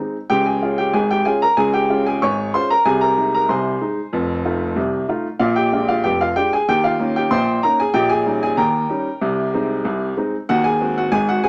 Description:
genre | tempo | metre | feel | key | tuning
ragtime piano | 94 BPM | 2/4 | straight | Ab major | A4 = 440 Hz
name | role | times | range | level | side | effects
clear upright piano | solo | 0.0-11.5 s | F1 to Db6 | -19 LUFS | equal | none
room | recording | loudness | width
moderate studio reverb, RT60 0.9 s | none | -19 LUFS | mono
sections
0.3-11.5 A section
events
none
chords
0.3 Db; 2.9 Ab/C; 4.1 F7; 5.4 Bb7; 6.7 Eb7; 7.9 Eb7/Bb; 9.2 Ab/C; 10.5 Ab7

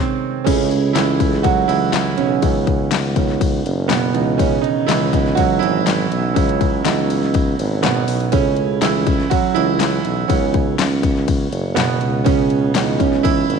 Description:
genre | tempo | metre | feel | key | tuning
piano-driven pop | 122 BPM | 4/4 | straight | C# minor | A4 = 439 Hz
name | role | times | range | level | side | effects
warm concert grand piano | accompaniment | 0.0-13.6 s | B2 to C#5 | -18 LUFS | right 9 dB | none
warm tuba | bass | 0.5-13.6 s | F#1 to C#2 | -21 LUFS | left 2 dB | none
pop drum kit | drums | 0.5-13.6 s | crash cymbal, handclaps, hi-hat, kick drum, ride cymbal, snare drum | -20 LUFS | left 5 dB | none
room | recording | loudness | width
moderate echo chamber reverb, RT60 1.8 s, small room reverb | 1960s-style stereo | -15 LUFS | side -6 dB against mid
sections
0.5-13.6 A section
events
stop 0.0-0.5; grand piano solo 0.5-13.6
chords
0.5 F#m7/C#; 2.4 Badd9/C#; 4.2 C#m7; 8.3 F#m7/C#; 10.3 Badd9/C#; 12.0 C#m7

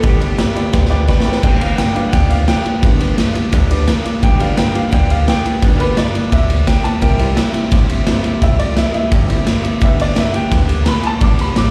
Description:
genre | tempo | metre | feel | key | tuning
rockabilly | 172 BPM | 4/4 | straight | G major | A4 = 441 Hz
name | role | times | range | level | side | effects
electric guitar through a small old amp | melody | 0.0-1.1 s | G4 | -27 LUFS | equal | slapback echo, digital delay
picked swing-style acoustic guitar | accompaniment | 0.0-11.7 s | G2 to G4 | -29 LUFS | equal | slapback echo
warm upright piano | accompaniment | 0.0-11.7 s | G3 to D6 | -24 LUFS | equal | slapback echo
upright bass | bass | 0.0-11.7 s | G1 to D2 | -20 LUFS | equal | none
raw garage drum kit | drums | 0.0-11.6 s | crash cymbal, kick drum, ride cymbal, snare drum | -17 LUFS | equal | none
room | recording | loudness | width
little or no reverb | live gig heard through the venue's PA, recital hall reverb | -15 LUFS | mono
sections
0.0-1.4 A section; 1.4-11.7 B section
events
drum fill 0.7-1.4; upright piano solo 1.4-11.7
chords
0.0 G; 7.0 C; 9.8 G

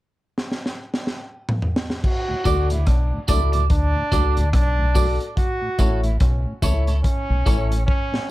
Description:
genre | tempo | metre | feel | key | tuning
roots reggae | 72 BPM | 4/4 | swing 60% on 16ths | D major | A4 = 440 Hz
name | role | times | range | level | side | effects
crunchy breakbeat drum kit | drums | 0.4-8.3 s | crash cymbal, hi-hat, kick drum, rim click, snare drum, toms | -22 LUFS | equal | none
bright trombone | second line | 2.0-8.3 s | C#4 to F#4 | -27 LUFS | right 1 dB | tape echo
mellow tonewheel organ | accompaniment | 2.3-8.2 s | D2 to D4 | -30 LUFS | left 1 dB | overdrive, chorus vibrato, slow rotary speaker
clean electric guitar | accompaniment | 2.4-7.7 s | E4 to D5 | -28 LUFS | right 8 dB | tape echo
dark upright piano | stabs | 2.4-7.7 s | E4 to D5 | -28 LUFS | left 5 dB | none
deep dub fingered electric bass | bass | 2.5-7.8 s | A1 to D2 | -20 LUFS | equal | none
tambourine | percussion | 2.5-7.7 s | none | -35 LUFS | right 4 dB | none
room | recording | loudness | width
light reverb | none | -18 LUFS | side -17 dB against mid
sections
0.0-2.0 A section; 2.0-8.3 B section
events
drum fill 0.4-2.0, 7.9-8.3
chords
0.0 N.C.; 2.0 D; 5.4 A

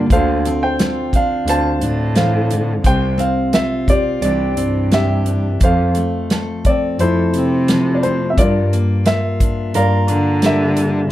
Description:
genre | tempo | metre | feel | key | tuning
acoustic folk-pop ballad | 87 BPM | 4/4 | straight | unclear | A4 = 440 Hz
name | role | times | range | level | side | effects
warm concert grand piano | melody | 0.0-11.1 s | E4 to A5 | -20 LUFS | equal | plate reverb
fingerpicked steel-string acoustic guitar | accompaniment | 0.0-11.1 s | F2 to A4 | -21 LUFS | left 1 dB | none
mellow electric guitar | arpeggios | 0.0-11.1 s | Bb3 to D5 | -24 LUFS | right 4 dB | harmonic tremolo
warm cello | bass | 0.1-11.0 s | C2 to D3 | -18 LUFS | equal | none
natural country drum kit | drums | 0.1-10.9 s | hi-hat, kick drum, snare drum | -18 LUFS | equal | none
room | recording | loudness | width
light reverb | dark, warm production | -14 LUFS | side -14 dB against mid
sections
0.0-11.1 A section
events
none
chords
0.1 Dm7; 2.8 Csus4; 4.2 Cadd9; 5.6 Fmaj7; 8.4 Gm7

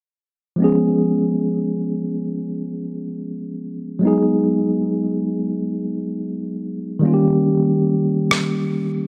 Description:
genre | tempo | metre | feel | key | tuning
contemporary R&B | 70 BPM | 4/4 | straight | unclear | A4 = 440 Hz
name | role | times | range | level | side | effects
mellow tine electric piano | accompaniment | 0.6-9.1 s | D#3 to G#4 | -20 LUFS | equal | none
electronic rim click | drums | 8.3-8.5 s | none | -22 LUFS | equal | none
room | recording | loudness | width
moderate lush hall reverb, RT60 2.4 s | none | -20 LUFS | mono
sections
0.6-9.1 A section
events
none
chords
0.6 C#7; 4.0 G#m7; 7.0 D#7

